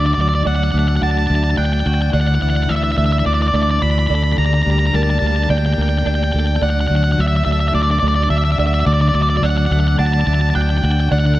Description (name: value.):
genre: post-rock.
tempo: 107 BPM.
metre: 4/4.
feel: straight.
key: D major.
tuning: A4 = 440 Hz.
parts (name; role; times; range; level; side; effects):
octave-fuzz lead guitar; melody; 0.0-11.4 s; D5 to B5; -20 LUFS; equal; distortion, slapback echo.
dark chamber string section; sustained chords; 0.0-11.4 s; F#3 to D5; -28 LUFS; left 3 dB; none.
felt-muted upright piano; arpeggios; 0.0-11.4 s; Bb4 to F#6; -28 LUFS; right 7 dB; slapback echo.
twelve-string electric guitar; arpeggios; 0.0-11.4 s; D3 to A4; -22 LUFS; left 2 dB; tremolo, slapback echo.
fingered electric bass; bass; 0.0-11.4 s; D2; -16 LUFS; equal; none.
room: light reverb, studio reverb.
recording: dark, warm production.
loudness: -14 LUFS.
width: side -16 dB against mid.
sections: 0.0-11.4 A section.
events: none.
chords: 0.0 D; 2.1 Asus4/D; 4.4 Gmadd9/D; 6.6 D.